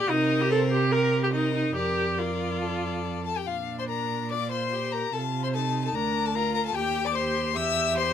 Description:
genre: quick classical-period movement for string quartet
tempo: 145 BPM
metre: 4/4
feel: rubato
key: Bb major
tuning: A4 = 440 Hz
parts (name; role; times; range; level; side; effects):
- clear violin; melody; 0.0-8.1 s; G4 to E6; -30 LUFS; left 10 dB; none
- rich viola; accompaniment; 0.0-8.1 s; D4 to Bb4; -29 LUFS; right 1 dB; none
- rich violin; second line; 0.1-8.1 s; F4 to E5; -31 LUFS; left 3 dB; none
- rich cello; bass; 0.1-8.1 s; D2 to C3; -30 LUFS; right 4 dB; none
room: little or no reverb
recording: close, detailed microphones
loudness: -24 LUFS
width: side -9 dB against mid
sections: 0.0-3.5 A section; 3.5-8.1 B section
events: none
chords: 0.1 Cm7; 1.8 Bb/F; 2.6 F; 3.5 Bb; 5.1 F5/C; 5.9 Bbmaj7/D; 6.8 Cm/Eb; 7.6 C/E

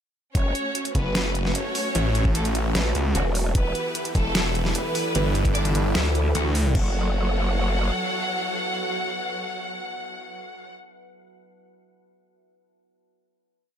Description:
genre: heavy wobble dubstep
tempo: 150 BPM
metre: 4/4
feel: half-time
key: F# phrygian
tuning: A4 = 440 Hz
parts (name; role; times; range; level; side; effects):
- rich studio violin section; melody; 0.3-10.7 s; A3 to F#5; -29 LUFS; equal; dub echo
- supersaw chords; sustained chords; 0.3-10.7 s; E3 to C#5; -32 LUFS; right 1 dB; sidechain pumping
- growl bass; bass; 0.3-7.9 s; E1 to D2; -24 LUFS; equal; chorus, overdrive
- dubstep drum kit; drums; 0.3-6.8 s; crash cymbal, hi-hat, snare drum; -28 LUFS; equal; overdrive
- electronic kick drum; drums; 0.3-6.8 s; none; -23 LUFS; equal; none
- deep dark ambient pad; texture; 1.4-10.7 s; E4 to A5; -33 LUFS; right 1 dB; chorus, built-in reverb, sidechain pumping
- snarling distorted saw bass; bass; 0.9-6.7 s; E1 to D2; -24 LUFS; equal; distortion, overdrive
room: light reverb, digital ambience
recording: none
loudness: -21 LUFS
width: side -9 dB against mid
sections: 0.3-6.8 drop; 6.8-9.9 final chord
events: drop 0.3-6.8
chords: 0.3 F#m; 3.5 Em; 6.8 F#m

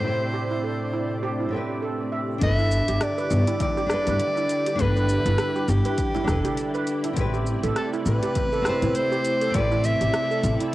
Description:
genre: sunset chillout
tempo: 101 BPM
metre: 4/4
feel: swing 57% on 16ths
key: G major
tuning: A4 = 439 Hz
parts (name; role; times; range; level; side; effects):
- bright soprano saxophone; melody; 0.0-10.7 s; G4 to E5; -27 LUFS; equal; cassette tape, tape echo
- nylon-string guitar; accompaniment; 0.0-10.7 s; A2 to C5; -29 LUFS; equal; auto-pan, cassette tape, tape echo
- soft string machine; sustained chords; 0.0-10.7 s; C3 to D5; -32 LUFS; equal; ensemble chorus, cassette tape
- steel pan; arpeggios; 0.0-10.7 s; E4 to E5; -31 LUFS; right 5 dB; cassette tape, tape echo
- upright bass; bass; 2.4-10.5 s; E1 to A2; -24 LUFS; equal; none
- deep house drum kit; drums; 2.4-10.7 s; hi-hat, rim click, shaker; -33 LUFS; equal; overdrive, low-pass filter on hats, cassette tape, low-pass filter on perc, low-pass filter on snare
- electronic kick drum; drums; 2.4-9.7 s; none; -29 LUFS; equal; overdrive, cassette tape
- congas; percussion; 2.4-10.6 s; none; -36 LUFS; left 6 dB; none
room: light reverb, studio reverb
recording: home recording on cassette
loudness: -21 LUFS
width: side -16 dB against mid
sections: 0.0-2.4 A section; 2.4-10.7 B section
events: none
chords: 0.0 Am9; 2.4 G6; 7.2 Am9

